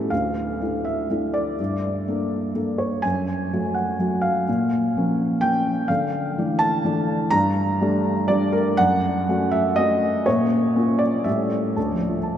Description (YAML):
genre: neoclassical minimalist piano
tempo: 124 BPM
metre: 3/4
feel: rubato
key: unclear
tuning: A4 = 438 Hz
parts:
  - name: felt-muted upright piano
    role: solo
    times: 0.0-12.4 s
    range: D2 to Bb5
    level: -20 LUFS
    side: equal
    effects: none
room: wet cathedral reverb, RT60 7.0 s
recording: in a vast, echoing space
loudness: -19 LUFS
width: side -10 dB against mid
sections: 0.1-11.8 A section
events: none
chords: 0.1 Dmadd9; 1.6 Gmadd9; 3.0 F#m; 4.5 Bbm; 5.9 Dmadd9; 7.3 Gmadd9; 8.8 F#m; 10.3 Bbm; 11.3 A7; 11.8 Dmadd9